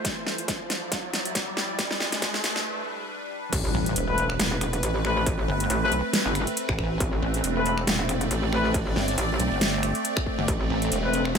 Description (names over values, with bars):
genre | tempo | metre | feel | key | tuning
heavy wobble dubstep | 138 BPM | 4/4 | swing 55% on 16ths, half-time | A minor | A4 = 440 Hz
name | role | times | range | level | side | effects
evolving wavetable pad | sustained chords | 0.0-11.4 s | F3 to D5 | -29 LUFS | right 1 dB | phaser, built-in reverb, sidechain pumping
dubstep drum kit | drums | 0.0-11.4 s | crash cymbal, finger snaps, hi-hat, snare drum | -27 LUFS | equal | high-pass filter on toms, high-pass filter on snare, high-pass filter on hats, high-pass filter on cymbals
electronic kick drum | drums | 0.0-10.6 s | none | -30 LUFS | equal | distortion
riser and impact | sound effects | 0.0-5.3 s | none | -34 LUFS | equal | none
metallic wobble bass | bass | 3.5-11.4 s | E1 to A1 | -27 LUFS | equal | chorus, overdrive
pulsing pluck wobble bass | bass | 3.7-11.3 s | E1 to B1 | -27 LUFS | equal | chorus, overdrive
warm brass ensemble | stabs | 4.1-11.2 s | A3 to B4 | -28 LUFS | left 4 dB | ping-pong delay
room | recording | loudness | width
light reverb | high-pass filter | -23 LUFS | side -6 dB against mid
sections
0.0-3.5 A section; 3.5-11.4 B section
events
build-up 0.0-3.5; drum fill 0.0-2.7; riser 0.0-2.7; break 2.7-3.5; drop 3.5-11.4; impact 3.5-5.3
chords
0.0 Dmadd9; 1.8 G; 3.5 Amadd9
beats
| 0.05 0.48 0.92 1.35 | 1.79 2.22 2.66 3.09 | 3.53 3.96 4.39 4.83 | 5.26 5.70 6.13 6.57 | 7.00 7.44 7.87 8.31 | 8.74 9.18 9.61 10.05 | 10.48 10.92 11.35